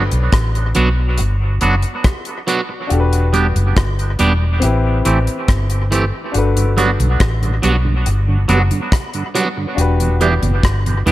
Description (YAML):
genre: lovers rock reggae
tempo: 70 BPM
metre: 4/4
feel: straight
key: G major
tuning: A4 = 439 Hz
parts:
  - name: clear baby grand piano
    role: accompaniment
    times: 0.0-11.1 s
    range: C4 to C5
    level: -24 LUFS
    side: left 4 dB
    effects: none
  - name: twangy electric guitar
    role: stabs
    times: 0.0-11.1 s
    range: E3 to G4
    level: -20 LUFS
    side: right 3 dB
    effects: phaser, dub echo
  - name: vintage muted fingered electric bass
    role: bass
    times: 0.0-11.1 s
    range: E1 to B1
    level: -16 LUFS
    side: equal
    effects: none
  - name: damped 70s drum kit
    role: drums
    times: 0.1-11.1 s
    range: hi-hat, kick drum, rim click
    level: -19 LUFS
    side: equal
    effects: gated reverb, dub echo
  - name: mellow tonewheel organ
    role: accompaniment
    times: 6.6-11.1 s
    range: E2 to F#4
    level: -23 LUFS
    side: right 4 dB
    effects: chorus vibrato, stopped rotary speaker
room: light reverb, small room ambience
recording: none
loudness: -14 LUFS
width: side -15 dB against mid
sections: 0.0-11.1 A section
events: none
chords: 0.0 Gmaj7; 2.9 Em7; 4.6 Am7; 6.3 Gmaj7; 9.8 Em7